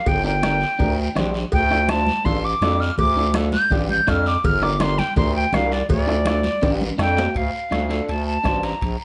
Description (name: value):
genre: latin, cumbia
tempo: 165 BPM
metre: 4/4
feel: straight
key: D minor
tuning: A4 = 440 Hz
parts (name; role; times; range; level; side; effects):
- silver concert flute; melody; 0.0-9.0 s; D5 to G6; -24 LUFS; equal; none
- growling FM bass; bass; 0.1-9.0 s; G1 to F2; -26 LUFS; equal; none
- bombo; percussion; 0.1-9.0 s; none; -28 LUFS; equal; none
- congas; percussion; 0.1-9.0 s; none; -31 LUFS; equal; none
- cowbell and timbales; percussion; 0.1-9.0 s; none; -33 LUFS; equal; none
- guiro; percussion; 0.1-9.0 s; none; -38 LUFS; equal; none
- electric guitar at the edge of break-up; accompaniment; 0.2-8.7 s; D4 to C5; -30 LUFS; equal; none
room: light reverb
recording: nothing above 10.3 kHz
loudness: -20 LUFS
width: mono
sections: 0.0-7.4 A section; 7.4-9.0 B section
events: flute solo 0.0-7.4; drum fill 6.6-7.4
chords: 0.0 Gm; 1.5 Dm; 4.4 Gm; 5.9 Dm